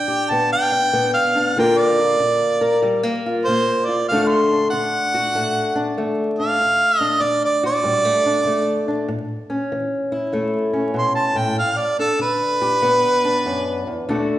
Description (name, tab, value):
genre	acoustic country blues, solo or duo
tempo	96 BPM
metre	4/4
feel	swing 65% on 8ths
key	unclear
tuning	A4 = 440 Hz
part	warm harmonica	melody	0.0-14.0 s	A4 to C6	-18 LUFS	right 2 dB	none
part	fingerpicked old ladder-braced acoustic guitar	accompaniment	0.0-14.4 s	D2 to Bb4	-20 LUFS	left 2 dB	none
room	wet recital hall reverb, RT60 1.3 s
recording	recorded in a church or concert hall, vinyl crackle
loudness	-17 LUFS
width	side -13 dB against mid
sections	0.0-14.4 A section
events	none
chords	0.0 G; 1.6 Gm7; 4.1 D; 9.1 A; 11.6 G